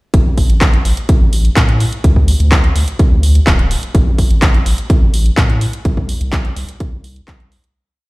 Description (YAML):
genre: progressive house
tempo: 126 BPM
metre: 4/4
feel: straight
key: A minor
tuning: A4 = 440 Hz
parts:
  - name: round analog bass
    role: bass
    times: 0.1-7.6 s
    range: D1 to A2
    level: -14 LUFS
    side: equal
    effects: sidechain pumping
  - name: electronic kick drum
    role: drums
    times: 0.1-7.4 s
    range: none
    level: -12 LUFS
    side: equal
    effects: overdrive
  - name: house drum kit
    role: drums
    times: 0.1-7.7 s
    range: handclaps, hi-hat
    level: -20 LUFS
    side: equal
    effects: overdrive, sidechain pumping on hats
room: little or no reverb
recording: played on a big sound system in a bare room, stone room reverb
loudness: -10 LUFS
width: side -22 dB against mid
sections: 0.1-7.8 drop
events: drop 0.1-7.8; fade-out 5.2-7.8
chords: none